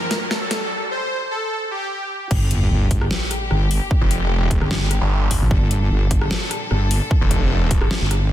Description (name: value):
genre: heavy wobble dubstep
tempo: 150 BPM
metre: 4/4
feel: half-time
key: G minor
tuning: A4 = 439 Hz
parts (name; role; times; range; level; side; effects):
- soft supersaw; melody; 0.0-2.2 s; G4 to C5; -25 LUFS; equal; tape echo
- clear studio string section; sustained chords; 0.0-8.3 s; G2 to A4; -29 LUFS; left 3 dB; sidechain pumping
- riser and sub drop; sound effects; 0.0-3.9 s; none; -27 LUFS; equal; none
- dubstep drum kit; drums; 0.1-8.2 s; crash cymbal, hi-hat, rim click, snare drum; -25 LUFS; left 1 dB; overdrive
- wobble bass; bass; 2.3-8.3 s; G1 to Bb1; -18 LUFS; equal; chorus, overdrive
- electronic kick drum; drums; 2.3-7.8 s; none; -20 LUFS; equal; none
- snarling distorted saw bass; bass; 4.0-7.8 s; F1 to G1; -19 LUFS; equal; distortion, overdrive
room: little or no reverb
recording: dense, heavily limited modern master, high-pass filter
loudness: -17 LUFS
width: side -12 dB against mid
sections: 0.0-2.3 A section; 2.3-8.3 B section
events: build-up 0.0-2.3; drum fill 0.0-0.7; riser 0.0-0.7; break 0.7-2.3; drop 2.3-8.3; impact 2.3-3.9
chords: 0.0 Cmadd9/G; 0.7 N.C.; 2.3 Gm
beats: 0.31 | 0.71 1.11 1.51 1.91 | 2.31 2.71 3.11 3.51 | 3.91 4.31 4.71 5.11 | 5.51 5.91 6.31 6.71 | 7.11 7.51 7.91 8.31